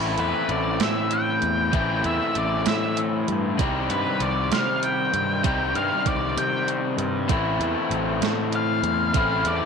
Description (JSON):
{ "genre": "indie rock", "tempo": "65 BPM (dotted quarters)", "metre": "6/8", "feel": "straight", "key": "unclear", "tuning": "A4 = 440 Hz", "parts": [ { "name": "overdriven electric guitar", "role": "riff", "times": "0.0-9.7 s", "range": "A2 to G4", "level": "-26 LUFS", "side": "left 12 dB", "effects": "none" }, { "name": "raw garage guitar", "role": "riff", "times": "0.0-9.7 s", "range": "A2 to E4", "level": "-29 LUFS", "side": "right 13 dB", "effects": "overdrive, analog chorus, slapback echo" }, { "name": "fuzz picked electric bass", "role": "bass", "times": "0.0-9.6 s", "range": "A1 to C3", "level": "-29 LUFS", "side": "equal", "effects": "overdrive" }, { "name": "octave-fuzz lead guitar", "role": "melody", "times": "0.2-9.7 s", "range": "B4 to G5", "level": "-26 LUFS", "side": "left 1 dB", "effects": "distortion, slapback echo" }, { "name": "gated 80s digital drum machine", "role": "drums", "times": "0.2-9.6 s", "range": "hi-hat, kick drum, snare drum", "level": "-27 LUFS", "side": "right 5 dB", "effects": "gated reverb, gated reverb snare, overdrive" }, { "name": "combo organ", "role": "sustained chords", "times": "7.3-9.7 s", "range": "E3 to G5", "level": "-36 LUFS", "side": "left 10 dB", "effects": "none" } ], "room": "moderate spring reverb, RT60 1.7 s", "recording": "1960s-style stereo with parts hard left and right", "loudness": "-21 LUFS", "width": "side -6 dB against mid", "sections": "0.0-9.7 A section", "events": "lead electric guitar solo 0.0-9.7; kick and snare drop out 6.4-7.3", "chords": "0.0 Am7; 3.6 Cm; 7.3 Am7" }